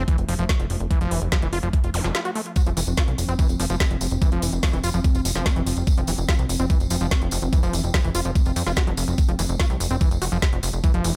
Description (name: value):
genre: psychedelic trance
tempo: 145 BPM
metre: 4/4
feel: straight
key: F major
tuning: A4 = 440 Hz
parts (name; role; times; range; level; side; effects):
- pulsing gated texture; sustained chords; 0.0-11.2 s; F3 to C4; -34 LUFS; equal; chorus, built-in reverb, sidechain pumping
- overdriven acid bass; riff; 0.0-11.1 s; E3 to Gb4; -32 LUFS; equal; distortion, sidechain pumping, delay
- plucky analog bass; bass; 0.0-11.1 s; F1 to F2; -27 LUFS; equal; none
- electronic kick drum; drums; 0.1-10.9 s; none; -22 LUFS; equal; overdrive, small room reverb
- garage drum kit; drums; 0.1-11.1 s; hi-hat, snare drum; -31 LUFS; equal; overdrive, small room reverb
- zap; sound effects; 1.9-2.0 s; none; -36 LUFS; equal; none
- tambourine; percussion; 2.6-11.1 s; none; -36 LUFS; equal; none
room: digital ambience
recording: none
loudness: -22 LUFS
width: mono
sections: 0.0-11.2 A section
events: break 2.1-2.6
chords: 0.0 F5